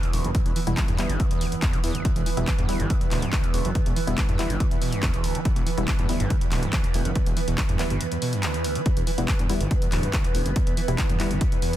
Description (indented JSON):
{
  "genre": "driving peak-time techno",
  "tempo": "141 BPM",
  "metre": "4/4",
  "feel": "straight",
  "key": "E minor",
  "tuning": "A4 = 440 Hz",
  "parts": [
    { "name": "screaming distorted acid line", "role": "riff", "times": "0.0-11.8 s", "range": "E1 to E3", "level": "-30 LUFS", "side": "equal", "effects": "distortion, chorus, sidechain pumping, dub echo" },
    { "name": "overtone-sweeping drone", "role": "drone", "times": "0.0-11.8 s", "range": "E3 to B3", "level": "-33 LUFS", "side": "right 7 dB", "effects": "chorus, built-in reverb, sidechain pumping" },
    { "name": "punchy analog drum machine", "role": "drums", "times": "0.0-11.8 s", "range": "handclaps, hi-hat", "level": "-32 LUFS", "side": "equal", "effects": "none" },
    { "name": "ethereal airy pad", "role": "texture", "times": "0.0-11.8 s", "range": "B4", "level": "-34 LUFS", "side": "right 4 dB", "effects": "ensemble chorus, built-in reverb, sidechain pumping" },
    { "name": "detuned saw bass", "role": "bass", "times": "0.1-11.4 s", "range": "D1 to E2", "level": "-28 LUFS", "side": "equal", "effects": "sidechain pumping" },
    { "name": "electronic kick drum", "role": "drums", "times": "0.3-11.5 s", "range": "none", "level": "-24 LUFS", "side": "equal", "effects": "overdrive" },
    { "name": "wavetable chord stab", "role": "stabs", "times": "0.7-11.3 s", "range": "G3 to E4", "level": "-34 LUFS", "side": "left 2 dB", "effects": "sidechain pumping, dub echo" }
  ],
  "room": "little or no reverb",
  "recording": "dense, heavily limited modern master",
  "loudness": "-21 LUFS",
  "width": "side -13 dB against mid",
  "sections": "0.0-11.8 A section",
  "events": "none",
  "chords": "0.0 Em"
}